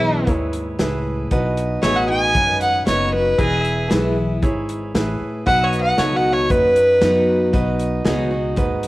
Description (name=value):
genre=honky-tonk and classic country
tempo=116 BPM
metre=4/4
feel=straight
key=E major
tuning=A4 = 437 Hz
part: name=rich fiddle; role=melody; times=0.0-7.5 s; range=E4 to G#5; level=-17 LUFS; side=equal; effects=cassette tape
part: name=clear grand piano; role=accompaniment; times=0.0-8.9 s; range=D#4 to C#5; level=-25 LUFS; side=right 2 dB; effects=cassette tape
part: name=picked steel-string acoustic guitar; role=accompaniment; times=0.0-8.9 s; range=E2 to F#4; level=-24 LUFS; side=left 2 dB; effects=cassette tape
part: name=pedal steel guitar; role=sustained chords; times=0.0-8.9 s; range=B4 to E5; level=-32 LUFS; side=right 1 dB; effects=cassette tape
part: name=upright bass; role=bass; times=0.0-8.9 s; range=E1 to F#2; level=-24 LUFS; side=equal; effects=none
part: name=natural country drum kit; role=drums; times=0.3-8.9 s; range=hi-hat, kick drum, snare drum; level=-23 LUFS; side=equal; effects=cassette tape
room=light reverb, studio reverb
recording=home recording on cassette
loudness=-16 LUFS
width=side -18 dB against mid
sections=0.0-8.9 A section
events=fiddle solo 0.0-8.9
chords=0.0 E; 1.3 B; 3.4 E; 5.5 B